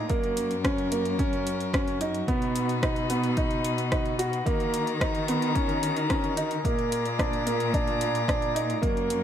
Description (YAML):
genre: piano and strings electronica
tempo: 110 BPM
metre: 4/4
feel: straight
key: unclear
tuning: A4 = 443 Hz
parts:
  - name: warm string quartet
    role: sustained chords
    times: 0.0-9.2 s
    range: D#3 to A#5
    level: -31 LUFS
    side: left 3 dB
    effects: none
  - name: warm grand piano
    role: riff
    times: 0.0-9.2 s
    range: A#3 to F#4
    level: -28 LUFS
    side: right 3 dB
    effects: tape echo
  - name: rich studio cello section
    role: bass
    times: 0.0-9.2 s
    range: F#2 to D#3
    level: -32 LUFS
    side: left 2 dB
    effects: sidechain pumping
  - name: deep house drum kit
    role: drums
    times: 0.1-9.2 s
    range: hi-hat, rim click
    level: -35 LUFS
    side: equal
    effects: overdrive, studio reverb
  - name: electronic kick drum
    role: drums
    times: 0.1-8.9 s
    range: none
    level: -30 LUFS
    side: left 1 dB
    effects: overdrive, studio reverb
room: light reverb, studio reverb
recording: none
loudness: -24 LUFS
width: side -9 dB against mid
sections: 0.0-9.2 A section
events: none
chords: 0.1 F#; 2.3 B; 4.5 D#m; 6.6 A#7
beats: | 0.10 0.65 1.19 1.74 | 2.28 2.83 3.37 3.92 | 4.46 5.01 5.55 6.10 | 6.64 7.19 7.74 8.28 | 8.83